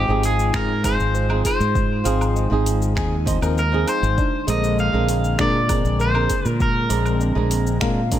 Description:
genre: sunset chillout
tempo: 99 BPM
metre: 4/4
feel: straight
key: F dorian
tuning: A4 = 440 Hz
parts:
  - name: electric guitar at the edge of break-up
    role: melody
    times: 0.0-8.2 s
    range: G4 to F5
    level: -24 LUFS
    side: left 1 dB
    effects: ping-pong delay
  - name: flamenco guitar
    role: accompaniment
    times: 0.0-8.2 s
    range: D3 to C5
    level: -25 LUFS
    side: right 2 dB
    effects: auto-pan, ping-pong delay
  - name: airy breathy pad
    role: sustained chords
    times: 0.0-8.2 s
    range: D3 to F4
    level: -29 LUFS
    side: right 2 dB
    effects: chorus
  - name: mellow fretless electric bass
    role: bass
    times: 0.0-8.2 s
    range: Ab1 to Bb2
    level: -21 LUFS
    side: equal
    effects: none
  - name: soft round pluck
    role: arpeggios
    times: 0.2-8.2 s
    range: D4 to Ab5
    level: -31 LUFS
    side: left 1 dB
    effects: analog chorus, ping-pong delay
  - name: smooth R&B drum kit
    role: drums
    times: 0.2-8.2 s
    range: finger snaps, hi-hat, shaker, woodblock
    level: -30 LUFS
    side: right 1 dB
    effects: none
  - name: electronic kick drum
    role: drums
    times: 0.5-8.2 s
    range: none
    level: -24 LUFS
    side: equal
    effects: none
room: light reverb, digital ambience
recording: none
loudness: -17 LUFS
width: side -11 dB against mid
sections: 0.0-8.2 A section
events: none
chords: 0.0 Fm7/Ab; 4.2 Bb9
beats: 0.54 1.15 | 1.75 2.36 2.96 3.57 | 4.18 4.78 5.39 6.00 | 6.60 7.21 7.81

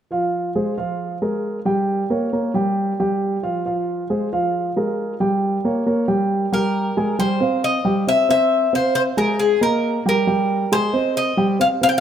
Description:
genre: latin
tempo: 136 BPM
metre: 4/4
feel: straight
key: F minor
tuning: A4 = 441 Hz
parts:
  - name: dark grand piano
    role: arpeggios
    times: 0.1-12.0 s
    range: F3 to Ab5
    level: -19 LUFS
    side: right 1 dB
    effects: slapback echo
  - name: Cuban tres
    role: melody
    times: 6.5-12.0 s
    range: Ab4 to G5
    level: -19 LUFS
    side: left 2 dB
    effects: none
room: moderate plate reverb, RT60 2.7 s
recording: rough home demo mix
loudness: -17 LUFS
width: side -9 dB against mid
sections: 0.1-7.2 A section; 7.2-12.0 B section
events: none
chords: 0.1 Fm; 1.0 Bb5; 1.9 Gdim; 2.8 Fsus2; 3.7 Fm; 4.5 Bb5; 5.4 Gdim; 6.3 Gm; 7.2 Fsus2; 8.1 C; 8.9 Fm; 9.8 Eb; 10.7 Ab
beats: | 0.12 0.56 1.00 1.44 | 1.89 2.33 2.77 3.21 | 3.65 4.10 4.54 4.98 | 5.42 5.86 6.30 6.75 | 7.19 7.63 8.07 8.51 | 8.95 9.39 9.83 10.27 | 10.71 11.15 11.59

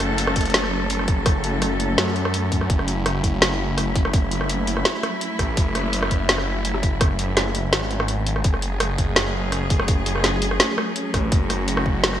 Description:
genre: half-time drum and bass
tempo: 167 BPM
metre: 4/4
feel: half-time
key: F# minor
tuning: A4 = 441 Hz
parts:
  - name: rich studio cello section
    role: sustained chords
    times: 0.0-12.2 s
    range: F#3 to A4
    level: -26 LUFS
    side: equal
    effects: sidechain pumping
  - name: phased detuned saw bass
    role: bass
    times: 0.0-12.2 s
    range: F#1 to F#2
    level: -24 LUFS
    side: equal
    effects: phaser
  - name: drum and bass drum kit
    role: drums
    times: 0.0-12.2 s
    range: hi-hat, rim click, snare drum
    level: -22 LUFS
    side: equal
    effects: none
  - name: electronic kick drum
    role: drums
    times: 0.4-11.9 s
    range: none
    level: -20 LUFS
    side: equal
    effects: none
room: moderate lush hall reverb, RT60 1.7 s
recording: bright 1980s-style digital production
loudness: -19 LUFS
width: side -11 dB against mid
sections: 0.0-8.4 A section; 8.4-12.2 A section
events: drop 0.0-8.4, 8.4-12.2; kick drops out 8.1-8.4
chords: 0.0 F#m; 8.4 F#madd9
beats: 0.18 0.54 0.90 | 1.26 1.62 1.98 2.34 | 2.70 3.06 3.42 3.77 | 4.13 4.49 4.85 5.21 | 5.57 5.93 6.29 6.65 | 7.01 7.37 7.73 8.09 | 8.45 8.80 9.16 9.52 | 9.88 10.24 10.60 10.96 | 11.32 11.68 12.04

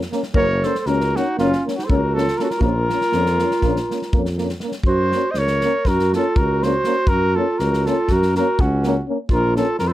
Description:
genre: balkan folk, Balkan brass band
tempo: 242 BPM (eighths)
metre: 9/8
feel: straight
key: unclear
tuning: A4 = 441 Hz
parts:
  - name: mellow tuba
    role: bass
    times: 0.0-9.9 s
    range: Gb1 to Gb2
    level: -21 LUFS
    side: equal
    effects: none
  - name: loose indie drum kit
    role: percussion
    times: 0.0-9.9 s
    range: kick drum, snare drum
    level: -23 LUFS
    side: equal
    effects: none
  - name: clear euphonium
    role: accompaniment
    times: 0.1-9.7 s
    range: Bb3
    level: -27 LUFS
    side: right 6 dB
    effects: none
  - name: warm euphonium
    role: accompaniment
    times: 0.1-9.7 s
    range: Db4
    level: -26 LUFS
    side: left 7 dB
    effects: none
  - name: dark clarinet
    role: second line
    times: 0.3-9.9 s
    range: Db4 to C5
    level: -24 LUFS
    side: right 4 dB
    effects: none
  - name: dark trumpet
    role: melody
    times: 0.4-9.9 s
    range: F4 to Eb5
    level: -22 LUFS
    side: left 1 dB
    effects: none
room: little or no reverb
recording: none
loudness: -16 LUFS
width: side -14 dB against mid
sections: 0.0-4.8 A section; 4.8-9.9 B section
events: none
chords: 0.4 Gb; 2.6 Bbm; 4.8 Gb; 9.3 Bbm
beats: 0.11 | 0.36 0.61 0.86 1.11 1.36 1.61 1.86 2.11 2.36 | 2.61 2.86 3.10 3.35 3.60 3.85 4.10 4.35 4.60 | 4.85 5.09 5.34 5.59 5.84 6.09 6.33 6.58 6.83 | 7.08 7.33 7.57 7.82 8.07 8.31 8.56 8.81 9.05 | 9.30 9.55 9.79

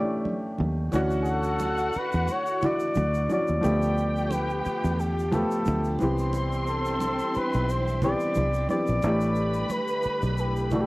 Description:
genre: lush 1970s-style soul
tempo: 89 BPM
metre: 4/4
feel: swing 54% on 16ths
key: D major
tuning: A4 = 443 Hz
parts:
  - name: breathy flugelhorn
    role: melody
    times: 0.0-10.9 s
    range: G4 to D5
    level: -29 LUFS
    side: left 1 dB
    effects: cassette tape
  - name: warm baby grand piano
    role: accompaniment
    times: 0.0-10.9 s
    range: E3 to G4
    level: -29 LUFS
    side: equal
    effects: none
  - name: congas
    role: percussion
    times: 0.3-10.9 s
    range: none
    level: -34 LUFS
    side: right 2 dB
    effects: none
  - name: fingered electric bass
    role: bass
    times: 0.6-10.8 s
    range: A1 to E2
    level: -27 LUFS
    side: equal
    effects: none
  - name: muted studio string section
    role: second line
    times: 0.9-10.9 s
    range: C4 to C6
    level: -32 LUFS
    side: equal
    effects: analog delay
  - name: soft string machine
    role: sustained chords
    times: 0.9-10.9 s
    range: D3 to G4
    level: -36 LUFS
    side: equal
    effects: ensemble chorus
  - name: egg shaker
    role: percussion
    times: 0.9-10.9 s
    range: none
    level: -52 LUFS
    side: right 3 dB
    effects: none
room: light reverb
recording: home recording on cassette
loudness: -23 LUFS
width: side -21 dB against mid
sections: 0.9-10.9 A section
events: none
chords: 0.0 A7sus4; 0.9 Dmaj9; 3.6 G9/D; 6.0 Cmaj7; 9.0 A7sus4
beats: 0.26 | 0.94 1.61 2.29 2.96 | 3.64 4.31 4.99 5.66 | 6.34 7.01 7.69 8.36 | 9.03 9.71 10.38

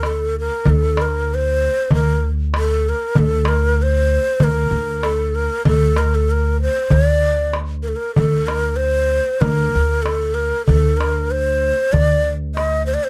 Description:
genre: Arabic maqam ensemble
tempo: 96 BPM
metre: 4/4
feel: straight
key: D maqam hijaz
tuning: A4 = 439 Hz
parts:
  - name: breathy low ney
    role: melody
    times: 0.0-13.1 s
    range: A4 to Eb5+30c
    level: -21 LUFS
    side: equal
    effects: none
  - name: upright bass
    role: bass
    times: 0.0-12.9 s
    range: D2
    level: -22 LUFS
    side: equal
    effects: none
  - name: darbuka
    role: percussion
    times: 0.0-12.7 s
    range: none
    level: -21 LUFS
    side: equal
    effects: none
room: little or no reverb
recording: dark, warm production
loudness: -18 LUFS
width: mono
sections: 0.0-13.1 A section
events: none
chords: none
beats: 0.03 | 0.65 1.27 1.90 2.52 | 3.15 3.77 4.40 5.02 | 5.65 6.28 6.90 7.53 | 8.16 8.79 9.42 10.04 | 10.68 11.30 11.93 12.56

